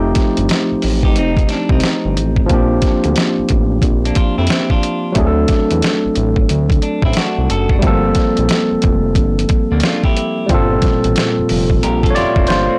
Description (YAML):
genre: R&B, neo-soul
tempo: 90 BPM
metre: 4/4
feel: swing 63% on 16ths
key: G minor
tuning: A4 = 440 Hz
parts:
  - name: barky tine electric piano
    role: accompaniment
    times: 0.0-12.8 s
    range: Bb2 to D5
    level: -19 LUFS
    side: equal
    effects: overdrive, plate reverb
  - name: fat analog bass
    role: bass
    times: 0.0-12.7 s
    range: F1 to F2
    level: -20 LUFS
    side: equal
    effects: transformer saturation
  - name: boom bap sampler-style drum kit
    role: drums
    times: 0.1-12.7 s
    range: hi-hat, kick drum, snare drum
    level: -18 LUFS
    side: equal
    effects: none
  - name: clean electric guitar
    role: second line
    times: 1.0-12.8 s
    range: A3 to Bb4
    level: -24 LUFS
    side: equal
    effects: spring reverb, plate reverb
room: light reverb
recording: blown-out, overdriven recording, overdrive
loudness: -15 LUFS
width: mono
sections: 0.0-12.8 A section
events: none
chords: 0.0 F9; 2.5 Bb69; 5.2 D7; 7.8 Gm11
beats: 0.49 1.16 1.83 | 2.49 3.16 3.83 4.49 | 5.16 5.83 6.49 7.16 | 7.83 8.49 9.16 9.83 | 10.49 11.16 11.83 12.49